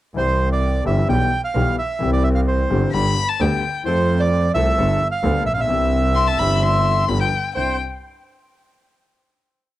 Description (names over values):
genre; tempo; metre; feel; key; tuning
tango; 130 BPM; 4/4; rubato; C major; A4 = 440 Hz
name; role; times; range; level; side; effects
warm concert grand piano; accompaniment; 0.1-7.8 s; G1 to A4; -24 LUFS; left 6 dB; none
bandoneon; melody; 0.2-7.8 s; C5 to G5; -21 LUFS; right 3 dB; cassette tape
clear double bass; bass; 0.2-7.8 s; G1 to F2; -20 LUFS; right 1 dB; none
warm violin; second line; 2.9-7.8 s; G5 to C6; -22 LUFS; left 6 dB; none
room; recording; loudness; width
studio reverb; home recording on cassette; -16 LUFS; side -14 dB against mid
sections
0.2-7.6 A section; 7.6-9.4 final chord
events
none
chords
0.2 C; 1.1 Em/B; 2.0 C; 2.9 G; 3.9 F; 4.8 Gadd9; 5.7 Cadd9; 7.1 G7; 7.6 Cadd9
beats
| 0.16 0.62 1.09 1.55 | 2.01 2.47 2.94 3.40 | 3.85 4.31 4.77 5.23 | 5.69 6.15 6.62 7.09 | 7.55